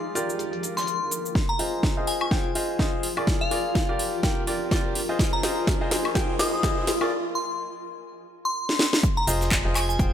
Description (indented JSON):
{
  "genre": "piano house",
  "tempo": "125 BPM",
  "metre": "4/4",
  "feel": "swing 57% on 16ths",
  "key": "F dorian",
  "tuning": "A4 = 438 Hz",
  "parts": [
    { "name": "bright baby grand piano", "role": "riff", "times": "0.0-10.1 s", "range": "F4 to G5", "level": "-29 LUFS", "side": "equal", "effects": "sidechain pumping, low-pass filter, tape echo" },
    { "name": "granular cloud pad", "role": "texture", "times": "0.0-10.1 s", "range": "F4 to Ab5", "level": "-35 LUFS", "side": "left 1 dB", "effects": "built-in reverb, sidechain pumping" },
    { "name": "breakbeat sampler-style drum kit", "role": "drums", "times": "0.2-1.2, 9.0-10.1 s", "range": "hi-hat, snare drum", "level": "-37 LUFS", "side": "left 1 dB", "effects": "sidechain pumping on hats, high-pass filter on hats, low-pass filter on hats, high-pass filter on snare, low-pass filter on snare, high-pass filter on room, low-pass filter on room" },
    { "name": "house drum kit", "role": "drums", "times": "0.2-10.1 s", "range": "handclaps, hi-hat, shaker, snare drum, woodblock", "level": "-27 LUFS", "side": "equal", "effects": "overdrive" },
    { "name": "glassy synth bell", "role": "melody", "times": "0.8-10.0 s", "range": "F5 to Eb6", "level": "-29 LUFS", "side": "left 2 dB", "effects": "chorus, tape echo" },
    { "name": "electronic kick drum", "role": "drums", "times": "1.4-10.1 s", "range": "none", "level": "-25 LUFS", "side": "equal", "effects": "overdrive" },
    { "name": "riser", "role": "sound effects", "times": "4.4-7.1 s", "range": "none", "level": "-35 LUFS", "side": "left 1 dB", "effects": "none" },
    { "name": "organ-like FM bass", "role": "bass", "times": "9.3-10.1 s", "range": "F1", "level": "-26 LUFS", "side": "equal", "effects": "sidechain pumping" }
  ],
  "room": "light reverb, digital ambience",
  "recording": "none",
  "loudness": "-22 LUFS",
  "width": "side -10 dB against mid",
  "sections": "0.0-1.4 A section; 1.4-9.0 B section; 9.0-10.1 C section",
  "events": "build-up 1.4-9.0; drum fill 1.4-7.1, 8.7-9.0; riser 4.4-7.1; break 7.1-9.0; drop 9.0-10.1",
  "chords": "0.2 Gm7; 1.4 Fm7; 3.3 Bb7/F; 4.0 Gm7; 7.1 N.C.; 9.0 Fm7"
}